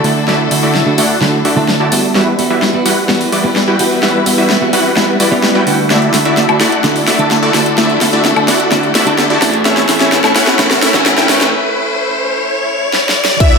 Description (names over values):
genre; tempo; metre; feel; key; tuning
EDM, festival progressive house; 128 BPM; 4/4; straight; D major; A4 = 441 Hz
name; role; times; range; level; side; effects
clean electric guitar; accompaniment; 0.0-11.5 s; A2 to A4; -16 LUFS; right 2 dB; lush chorus, sidechain pumping, tape echo
rich studio string section; sustained chords; 0.0-13.6 s; D3 to B4; -20 LUFS; left 2 dB; sidechain pumping
supersaw stab; riff; 0.0-13.6 s; G3 to A5; -14 LUFS; equal; sidechain pumping, low-pass filter, tape echo
fat analog bass; bass; 0.0-13.6 s; D1 to A2; -24 LUFS; left 1 dB; none
big-room dance drum kit; drums; 0.0-13.6 s; crash cymbal, hi-hat, snare drum, woodblock; -14 LUFS; left 1 dB; none
riser and impact; sound effects; 4.6-13.6 s; none; -21 LUFS; left 1 dB; none
plucky unison lead; arpeggios; 13.4-13.6 s; E5; -14 LUFS; right 1 dB; analog chorus, sidechain pumping
electronic kick drum; drums; 13.4-13.5 s; none; -8 LUFS; left 1 dB; none
room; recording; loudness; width
wet plate reverb, RT60 1.3 s, digital ambience; dreamy mix soaked in reverb, high-pass filter; -9 LUFS; side -5 dB against mid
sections
0.0-13.4 A section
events
build-up 0.0-13.4; drum fill 0.0-11.5, 12.9-13.4; filter sweep on supersaw synth 0.0-13.4; break 11.5-13.4; impact 13.4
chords
0.0 Dadd9; 2.2 Emadd9; 5.9 Dadd9; 9.7 A